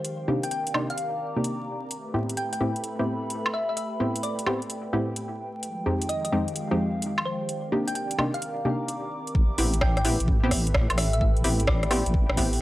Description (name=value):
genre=UK garage, two-step garage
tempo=129 BPM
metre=4/4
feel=swing 67% on 16ths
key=A minor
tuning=A4 = 440 Hz
part: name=warm analog pad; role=sustained chords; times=0.0-12.6 s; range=F3 to E5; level=-38 LUFS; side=equal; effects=chorus, sidechain pumping
part: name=punchy chord stab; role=stabs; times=0.0-12.6 s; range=F2 to G4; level=-28 LUFS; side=equal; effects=chorus, analog delay
part: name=garage drum kit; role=drums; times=0.0-12.6 s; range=hi-hat, rim click, woodblock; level=-29 LUFS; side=equal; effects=studio reverb
part: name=warbly tape-like pad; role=texture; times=0.0-12.6 s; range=Eb3 to D6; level=-36 LUFS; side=equal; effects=chorus, built-in reverb, sidechain pumping
part: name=thumb-piano-like synth pluck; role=melody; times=0.4-12.1 s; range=C5 to G5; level=-32 LUFS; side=left 1 dB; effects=wide subtle chorus, analog delay
part: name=deep soft wobble bass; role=bass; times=9.3-12.6 s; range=A1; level=-25 LUFS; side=equal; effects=chorus
part: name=electronic kick drum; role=drums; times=9.3-12.5 s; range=none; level=-24 LUFS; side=equal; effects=studio reverb
room=light reverb, digital ambience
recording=dry, gritty hardware recording, vinyl crackle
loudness=-24 LUFS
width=side -16 dB against mid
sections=0.0-9.3 A section; 9.3-12.6 B section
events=drop 9.3-12.6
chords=0.0 Cm9; 1.9 Am9; 5.6 Fm9; 7.5 Cm9; 9.3 Am9